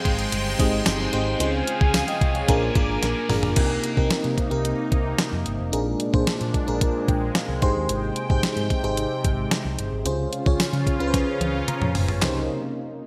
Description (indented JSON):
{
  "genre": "1980s-style pop",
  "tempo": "111 BPM",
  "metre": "4/4",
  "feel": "straight",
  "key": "C minor",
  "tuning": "A4 = 440 Hz",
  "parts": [
    { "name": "FM electric piano with soft pad layer", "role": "accompaniment", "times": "0.0-12.5 s", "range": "Bb3 to C6", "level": "-29 LUFS", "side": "equal", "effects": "chorus" },
    { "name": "scooped high-gain guitar", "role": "accompaniment", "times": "0.0-4.1 s", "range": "Ab2 to Db4", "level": "-35 LUFS", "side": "equal", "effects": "distortion, lush chorus" },
    { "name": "sweeping resonant pad", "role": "sustained chords", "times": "0.0-12.5 s", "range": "Bb2 to D6", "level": "-30 LUFS", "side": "equal", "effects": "chorus" },
    { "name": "picked electric bass", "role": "bass", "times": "0.1-12.5 s", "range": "F1 to Db3", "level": "-30 LUFS", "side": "equal", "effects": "none" },
    { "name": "clean 12-bit digital drum machine", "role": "drums", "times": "0.1-12.3 s", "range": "crash cymbal, handclaps, hi-hat, kick drum, snare drum, tambourine, toms", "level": "-26 LUFS", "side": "equal", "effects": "gated reverb" }
  ],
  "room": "moderate lush hall reverb, RT60 1.7 s, digital ambience",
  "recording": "bright 1980s-style digital production",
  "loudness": "-23 LUFS",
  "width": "mono",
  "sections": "0.0-3.6 A section; 3.6-12.2 B section",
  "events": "drum fill 3.0-3.6, 11.1-12.2; FM electric piano fill 6.8-7.9, 11.4-12.2",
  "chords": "0.0 Abmaj7; 1.4 Dbmaj7; 2.5 Bb7; 3.6 Cm7; 5.7 Bb7; 7.6 Abmaj7; 10.1 Dbmaj7; 12.2 Cm7"
}